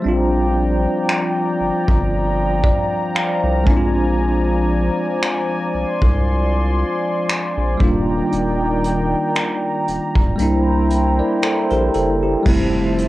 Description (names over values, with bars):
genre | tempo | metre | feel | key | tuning
contemporary R&B | 58 BPM | 4/4 | swing 54% on 16ths | unclear | A4 = 440 Hz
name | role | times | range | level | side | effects
bell-like tine electric piano | accompaniment | 0.0-13.1 s | G3 to Ab5 | -21 LUFS | equal | fast stereo tremolo, cassette tape
warm analog pad | sustained chords | 0.0-13.1 s | Eb3 to C6 | -21 LUFS | left 1 dB | chorus, cassette tape
saturated sub bass | bass | 0.1-13.1 s | D1 to C2 | -20 LUFS | equal | none
vintage brush drum kit | drums | 1.1-13.1 s | crash cymbal, finger snaps, hi-hat, kick drum | -19 LUFS | equal | cassette tape
room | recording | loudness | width
light reverb | home recording on cassette | -16 LUFS | side -16 dB against mid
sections
0.0-12.5 A section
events
tine electric piano fill 2.1-4.2; kick muted 10.4-12.5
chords
0.0 Bb6; 3.7 Bb7; 7.8 Ebmaj7; 10.4 C7; 12.5 Fmaj7